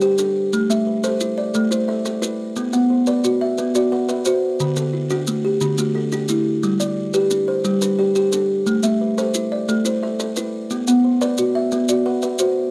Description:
southern african traditional, mbira-style interlocking cycle; 118 BPM (dotted quarters); 12/8; straight; G major; A4 = 440 Hz
buzzing kalimba; arpeggios; 0.0-12.7 s; D3 to F#5; -22 LUFS; equal
buzzing kalimba; arpeggios; 0.0-12.7 s; D3 to F#5; -24 LUFS; equal
maracas; percussion; 0.0-12.5 s; -29 LUFS; equal
moderate booth ambience, RT60 0.2 s; dry, close 1970s-style studio recording; -20 LUFS; mono
0.0-12.7 A section
0.0 G; 0.5 Am; 2.6 Bm; 4.6 D; 6.6 G; 8.7 Am; 10.7 Bm

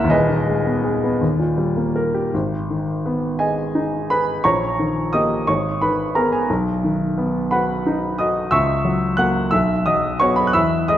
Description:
classical, romantic character piece for solo piano; 52-61 BPM (dotted quarters); 6/8; rubato; G# minor; A4 = 439 Hz
clear grand piano; solo; 0.0-11.0 s; D#1 to F#6; -17 LUFS; equal
moderate concert hall reverb, RT60 1.9 s; dark, warm production; -17 LUFS; side -11 dB against mid
0.0-2.3 A section; 2.3-11.0 B section
0.1 G#m/D#; 1.2 D#; 2.3 G#m; 4.4 D#7/A#; 5.5 G#m; 6.5 B; 8.5 F#7/C#; 9.5 B

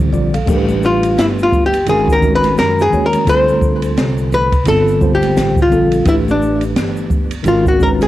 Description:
hip hop, jazz-hop; 86 BPM; 4/4; swing 59% on 16ths; A4 = 440 Hz
mellow tine electric piano; accompaniment; 0.0-8.1 s; D3 to F5; -17 LUFS; right 1 dB; fast stereo tremolo, cassette tape
upright bass; bass; 0.0-8.1 s; G1 to F#2; -20 LUFS; equal
congas and tube shaker; percussion; 0.1-8.1 s; -29 LUFS; right 2 dB
open jazz drum kit; drums; 0.3-8.1 s; crash cymbal, hi-hat, kick drum, ride cymbal, snare drum; -18 LUFS; equal; cassette tape
archtop guitar, miked and amplified; melody; 0.9-8.1 s; D4 to C5; -14 LUFS; left 1 dB; cassette tape, tape echo
light reverb; home recording on cassette; -11 LUFS; side -14 dB against mid
0.5-8.1 A section
hollow-body jazz guitar solo 0.5-8.1
0.5 Asus2; 1.9 G#sus2; 3.3 Dm7; 4.7 Gm9; 6.1 Asus2; 7.5 G#m9

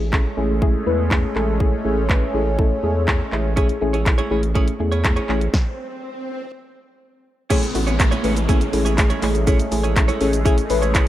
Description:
dance-pop; 122 BPM; 4/4; straight; A major; A4 = 440 Hz
deep mellow chord stab; accompaniment; 0.0-11.1 s; A3 to B4; -23 LUFS; left 2 dB; chorus, sidechain pumping
lush unison pad; sustained chords; 0.0-11.1 s; G#3 to C#4; -27 LUFS; right 1 dB; chorus, phaser, sidechain pumping
saturated sub bass; bass; 0.0-11.1 s; A1 to E2; -22 LUFS; equal; sidechain pumping
house drum kit; drums; 0.1-11.1 s; crash cymbal, handclaps, hi-hat, kick drum, shaker, snare drum; -19 LUFS; equal
direct-recorded clean electric guitar; riff; 3.6-11.1 s; C#4 to C#5; -28 LUFS; right 5 dB; wide subtle chorus
swell and downlifter; sound effects; 5.2-11.1 s; -31 LUFS; right 1 dB
digital ambience; rough home demo mix; -17 LUFS; side -13 dB against mid
0.0-7.5 A section; 7.5-11.1 B section
swell 5.2-7.5; stop 5.5-7.5
0.0 Amaj7

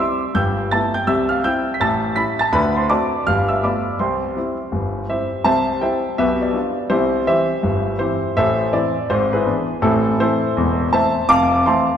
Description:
jazz, stride piano; 165 BPM; 4/4; swing 63% on 8ths; C major; A4 = 441 Hz
clear concert grand piano; solo; 0.0-12.0 s; E1 to B6; -16 LUFS; equal
wet church reverb, RT60 3.2 s; recorded in a church or concert hall; -16 LUFS; side -8 dB against mid
0.0-5.5 A section; 5.5-12.0 B section
0.3 G69; 1.1 C; 1.8 A7; 2.5 D7; 3.3 G9; 4.0 C; 6.2 G7/B; 6.9 C; 8.4 Am; 9.1 E7/G#; 9.8 Am; 11.3 Fmaj7

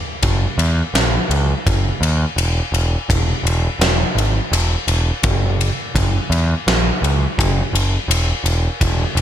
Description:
quiet-loud alternative rock; 84 BPM; 4/4; straight; A4 = 440 Hz
growling picked electric bass; bass; 0.2-9.2 s; E1 to E2; -17 LUFS; equal; overdrive
big rock drum kit; drums; 0.2-9.2 s; kick drum, ride cymbal, snare drum; -19 LUFS; equal
little or no reverb; -15 LUFS; side -10 dB against mid
0.0-9.2 A section
half time 0.0-9.2

